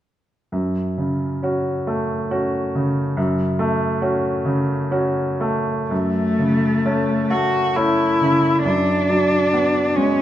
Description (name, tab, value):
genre	classical, romantic duo for cello and grand piano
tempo	66 BPM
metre	3/4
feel	uneven beats, rubato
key	F# minor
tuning	A4 = 443 Hz
part	bright concert grand piano	accompaniment	0.5-10.2 s	F#2 to F#4	-20 LUFS	equal	none
part	rich cello	melody	5.9-10.2 s	A3 to F#4	-18 LUFS	left 1 dB	none
room	moderate recital hall reverb, RT60 1.7 s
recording	none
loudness	-17 LUFS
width	side -12 dB against mid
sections	0.5-5.9 A section; 5.9-10.2 B section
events	none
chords	0.5 F#m; 8.6 G#m7b5/F#